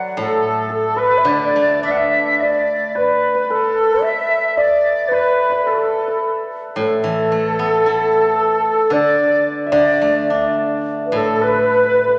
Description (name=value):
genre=chinese traditional, Chinese chamber ensemble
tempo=111 BPM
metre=2/4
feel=rubato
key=D gong mode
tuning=A4 = 441 Hz
part: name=hammered dulcimer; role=second line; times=0.0-12.2 s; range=A4 to A5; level=-23 LUFS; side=equal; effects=none
part: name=steel-string zither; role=accompaniment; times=0.0-3.0, 6.8-12.2 s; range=A2 to E4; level=-26 LUFS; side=equal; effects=none
part: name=xiao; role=melody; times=0.2-12.2 s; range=A4 to E5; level=-20 LUFS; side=equal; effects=none
part: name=bright reedy large dizi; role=second line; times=0.2-12.2 s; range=F#4 to F#5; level=-24 LUFS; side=equal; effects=none
room=wet concert hall reverb, RT60 2.2 s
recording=none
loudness=-17 LUFS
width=mono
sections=0.0-2.4 A section; 2.4-11.1 B section; 11.1-12.2 A section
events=none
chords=none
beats=| 0.19 0.72 | 1.27 1.83 | 2.40 2.95 | 3.49 4.03 | 4.57 5.10 | 5.65 6.21 | 6.77 7.32 | 7.86 8.40 | 8.94 9.48 | 10.02 10.58 | 11.14 11.70